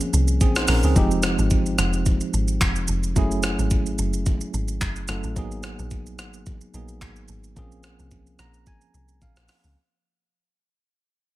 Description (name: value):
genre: amapiano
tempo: 109 BPM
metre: 4/4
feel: swing 55% on 16ths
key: unclear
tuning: A4 = 440 Hz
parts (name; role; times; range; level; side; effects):
- bell-like tine electric piano; accompaniment; 0.0-9.8 s; F3 to Bb5; -26 LUFS; right 2 dB; medium stereo tremolo
- jungle sampler-style drum kit; drums; 0.0-9.8 s; handclaps, hi-hat, kick drum, rim click, shaker; -24 LUFS; equal; none
- deep log drum bass; bass; 0.1-9.8 s; F1 to Db2; -24 LUFS; equal; none
room: digital ambience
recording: none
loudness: -20 LUFS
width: side -16 dB against mid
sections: 0.0-9.8 A section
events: fade-out 0.0-9.8; tine electric piano fill 8.1-9.8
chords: 0.0 Bbm9; 1.0 Fm9; 3.2 Gbm9; 5.4 Abm9; 7.6 Bbm9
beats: 0.41 | 0.96 1.51 2.06 2.61 | 3.16 3.71 4.26 4.81 | 5.36 5.91 6.46 7.01 | 7.57 8.12 8.67 9.22